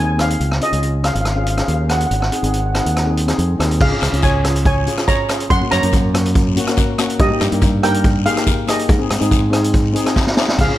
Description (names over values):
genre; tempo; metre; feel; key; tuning
calypso; 142 BPM; 4/4; straight; Db major; A4 = 439 Hz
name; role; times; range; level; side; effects
steel pan; melody; 0.0-10.8 s; G4 to C6; -21 LUFS; right 1 dB; none
steel pan; accompaniment; 0.0-10.8 s; Bb3 to Ab4; -22 LUFS; left 2 dB; none
modern bright fingered electric bass; bass; 0.0-10.7 s; Ab1 to Ab2; -18 LUFS; equal; none
street-band drum kit; drums; 0.2-10.7 s; crash cymbal, hi-hat, kick drum, rim click, snare drum; -18 LUFS; equal; none
guiro; percussion; 3.8-10.8 s; none; -29 LUFS; left 7 dB; none
room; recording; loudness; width
light reverb; none; -14 LUFS; side -14 dB against mid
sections
0.0-3.8 A section; 3.8-10.8 B section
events
drum fill 10.2-10.6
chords
0.4 Db; 2.1 Ab; 3.8 Db; 5.5 Gb; 7.2 Eb/G; 8.9 Ab